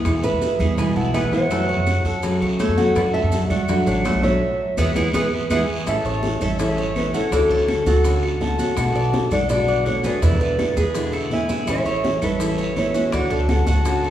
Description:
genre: latin, Cuban son and guajira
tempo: 165 BPM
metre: 4/4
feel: straight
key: A major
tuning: A4 = 436 Hz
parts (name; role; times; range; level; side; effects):
- nylon-string guitar; accompaniment; 0.0-14.1 s; B2 to F#4; -24 LUFS; left 1 dB; none
- Cuban tres; arpeggios; 0.0-14.0 s; A3 to D5; -27 LUFS; right 3 dB; none
- upright bass; bass; 0.0-14.1 s; A1 to F#2; -23 LUFS; right 1 dB; none
- bongos; percussion; 0.1-14.1 s; none; -33 LUFS; left 2 dB; none
- claves; percussion; 0.1-14.1 s; none; -35 LUFS; equal; none
- congas; percussion; 0.1-14.1 s; none; -28 LUFS; equal; none
- guiro; percussion; 0.1-14.1 s; none; -38 LUFS; right 2 dB; none
- maracas; percussion; 0.1-14.1 s; none; -41 LUFS; right 5 dB; none
- nylon-string guitar; melody; 0.2-14.1 s; F#4 to G#5; -24 LUFS; equal; none
- bright reedy silver concert flute; second line; 0.2-14.1 s; A4 to B5; -30 LUFS; right 1 dB; none
room: wet scoring stage reverb, RT60 2.0 s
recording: recorded in a church or concert hall, small room ambience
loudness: -18 LUFS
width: side -11 dB against mid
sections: 0.0-5.9 A section; 5.9-14.1 B section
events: band accent 4.4-5.9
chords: 0.0 E; 1.5 F#m; 3.0 D/F#; 4.4 E; 5.9 A; 7.3 Dmaj7; 8.8 Bm7; 10.2 E7; 11.7 A; 13.1 Dmaj7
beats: | 0.05 0.42 0.78 1.14 | 1.51 1.87 2.23 2.60 | 2.96 3.33 3.69 4.05 | 4.42 4.78 5.14 5.51 | 5.87 6.23 6.59 6.96 | 7.32 7.68 8.05 8.41 | 8.77 9.14 9.50 9.86 | 10.22 10.59 10.95 11.31 | 11.68 12.04 12.40 12.77 | 13.13 13.49 13.85

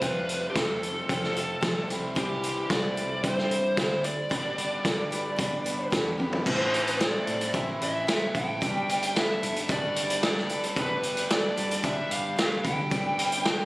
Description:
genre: folk rock and heartland rock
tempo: 112 BPM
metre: 4/4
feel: straight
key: unclear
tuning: A4 = 442 Hz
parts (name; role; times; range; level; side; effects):
- dark smooth lead guitar; melody; 0.0-13.7 s; G4 to G5; -30 LUFS; equal; overdrive
- picked swing-style acoustic guitar; accompaniment; 0.0-13.7 s; A2 to C5; -35 LUFS; left 1 dB; none
- crunchy overdriven guitar; riff; 0.0-13.7 s; F2 to A4; -36 LUFS; equal; none
- hollow-body short-scale fingered electric bass; bass; 0.0-13.6 s; G1 to F3; -36 LUFS; equal; none
- vintage drum kit; drums; 0.0-13.6 s; crash cymbal, hi-hat, kick drum, snare drum, toms; -28 LUFS; equal; none
room: light reverb, small room ambience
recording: recorded on a phone in the room, studio reverb, compression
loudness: -25 LUFS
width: side -20 dB against mid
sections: 0.0-6.5 A section; 6.5-13.7 B section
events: drum fill 6.2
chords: 0.0 Fadd9; 1.9 C; 4.3 G; 6.5 Am; 8.6 Gadd9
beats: | 0.02 0.56 1.09 1.63 | 2.17 2.70 3.24 3.78 | 4.31 4.85 5.39 5.93 | 6.46 7.00 7.54 8.08 | 8.61 9.15 9.69 10.23 | 10.76 11.30 11.84 12.38 | 12.91 13.45

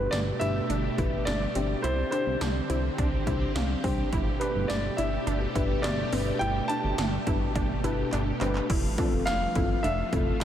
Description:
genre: synth-pop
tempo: 105 BPM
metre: 4/4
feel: straight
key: unclear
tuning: A4 = 440 Hz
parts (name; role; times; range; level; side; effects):
- warm baby grand piano; melody; 0.0-10.4 s; B4 to A5; -32 LUFS; equal; analog delay
- mellow tine electric piano; accompaniment; 0.0-10.4 s; C4 to G5; -33 LUFS; left 4 dB; lush chorus
- string machine, violas; sustained chords; 0.0-10.4 s; B2 to G4; -33 LUFS; right 1 dB; ensemble chorus
- chorused synth bass; bass; 0.0-10.4 s; F1 to C2; -30 LUFS; equal; none
- wide unison pluck; arpeggios; 0.1-10.4 s; C4 to E4; -36 LUFS; right 3 dB; analog delay
- 80s electronic pad drums; drums; 0.1-10.4 s; crash cymbal, handclaps, hi-hat, kick drum, snare drum; -31 LUFS; equal; none
room: moderate huge ambient reverb, RT60 7.8 s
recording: dreamy mix soaked in reverb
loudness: -25 LUFS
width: side -10 dB against mid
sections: 0.0-8.7 A section; 8.7-10.4 B section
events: tine electric piano fill 3.3-4.1; drum fill 8.1-8.7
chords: 0.0 Gadd9; 1.8 Csus2; 4.1 Gadd9; 8.7 Fmaj7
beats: 0.13 0.70 1.27 | 1.84 2.41 2.98 3.56 | 4.13 4.70 5.27 5.84 | 6.41 6.98 7.55 8.13 | 8.70 9.27 9.84 10.41

